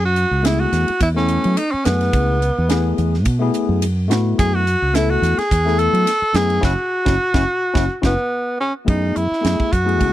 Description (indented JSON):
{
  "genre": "electric jazz fusion",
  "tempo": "107 BPM",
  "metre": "4/4",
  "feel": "swing 54% on 16ths",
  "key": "F# minor",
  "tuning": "A4 = 435 Hz",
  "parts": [
    { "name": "warm tenor saxophone", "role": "melody", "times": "0.0-10.1 s", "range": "B3 to A4", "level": "-19 LUFS", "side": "right 1 dB", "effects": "none" },
    { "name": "fingered electric bass", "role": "bass", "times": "0.0-10.1 s", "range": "F#1 to F#3", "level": "-19 LUFS", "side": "right 1 dB", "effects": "none" },
    { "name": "crisp fusion drum kit", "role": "drums", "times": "0.2-10.1 s", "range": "hi-hat, kick drum, ride cymbal, snare drum", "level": "-22 LUFS", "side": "right 1 dB", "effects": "none" },
    { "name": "tine electric piano", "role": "accompaniment", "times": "0.4-10.1 s", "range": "A3 to A4", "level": "-22 LUFS", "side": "left 4 dB", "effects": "lush chorus" }
  ],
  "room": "little or no reverb",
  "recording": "dry, close 1970s-style studio recording",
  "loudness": "-15 LUFS",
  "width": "side -14 dB against mid",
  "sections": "0.0-8.9 A section; 8.9-10.1 B section",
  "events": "band accent 6.6-8.9; tine electric piano fill 7.8-8.9; drum fill 8.6",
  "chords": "0.0 F#m11"
}